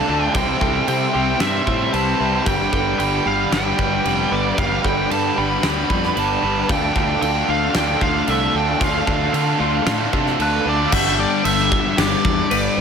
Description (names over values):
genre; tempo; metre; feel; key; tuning
rock, shoegaze and dream pop; 113 BPM; 4/4; straight; unclear; A4 = 442 Hz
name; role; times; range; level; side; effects
nasal lead guitar with a parked wah; melody; 0.0-12.8 s; B4 to B5; -23 LUFS; equal; overdrive, analog delay
analog string pad; sustained chords; 0.0-10.9 s; G4 to E6; -31 LUFS; left 1 dB; none
twelve-string electric guitar; arpeggios; 0.0-12.8 s; F4 to B4; -27 LUFS; equal; wide subtle chorus, analog delay
biting overdriven guitar; riff; 0.0-10.9 s; C3 to C5; -24 LUFS; right 11 dB; reverse reverb
biting overdriven guitar; riff; 0.0-12.8 s; G2 to D4; -25 LUFS; left 1 dB; none
thick fuzz guitar; riff; 0.0-12.8 s; G2 to D4; -26 LUFS; left 11 dB; distortion, analog chorus
fuzz fingered electric bass; bass; 0.1-12.8 s; F1 to D3; -25 LUFS; equal; overdrive
gated 80s drum kit; drums; 0.3-12.6 s; crash cymbal, kick drum, snare drum; -24 LUFS; equal; none
room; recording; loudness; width
light reverb, small room ambience; none; -16 LUFS; side -6 dB against mid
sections
0.0-10.9 A section; 10.9-12.8 B section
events
none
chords
0.3 C; 2.5 G; 6.7 Dmadd9; 10.9 Gmaj7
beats
| 0.35 0.88 1.40 1.93 | 2.46 2.99 3.52 4.05 | 4.58 5.11 5.63 6.16 | 6.69 7.22 7.75 8.28 | 8.81 9.34 9.87 10.40 | 10.93 11.46 11.98 12.51